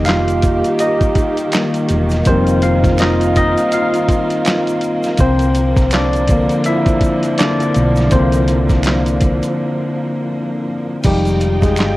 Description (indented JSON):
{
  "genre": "R&B, neo-soul",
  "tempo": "82 BPM",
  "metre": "4/4",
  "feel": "swing 60% on 16ths",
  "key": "unclear",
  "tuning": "A4 = 440 Hz",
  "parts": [
    { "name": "barky tine electric piano", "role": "accompaniment", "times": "0.0-12.0 s", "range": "D3 to F5", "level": "-16 LUFS", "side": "left 1 dB", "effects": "wide subtle chorus" },
    { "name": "rich studio string section", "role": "sustained chords", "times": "0.0-12.0 s", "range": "D3 to G5", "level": "-23 LUFS", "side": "right 2 dB", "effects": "none" },
    { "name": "hollow-body short-scale fingered electric bass", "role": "bass", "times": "0.0-12.0 s", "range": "E1 to C2", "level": "-17 LUFS", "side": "equal", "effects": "none" },
    { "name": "dusty soul sampler-style drum kit", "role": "drums", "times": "0.1-12.0 s", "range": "crash cymbal, handclaps, hi-hat, kick drum, snare drum", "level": "-17 LUFS", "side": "equal", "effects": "none" },
    { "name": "finger snaps and tube shaker", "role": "percussion", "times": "0.1-12.0 s", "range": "none", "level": "-32 LUFS", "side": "right 4 dB", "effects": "none" }
  ],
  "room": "small room ambience",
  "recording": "worn, warbling old tape, cassette tape, warbly pitch drift",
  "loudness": "-13 LUFS",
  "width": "side -18 dB against mid",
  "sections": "0.0-11.0 A section",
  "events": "tine electric piano solo 0.0-11.0; break 9.6-11.0",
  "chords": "0.0 F9sus4; 5.2 C9sus4; 11.0 Fm9"
}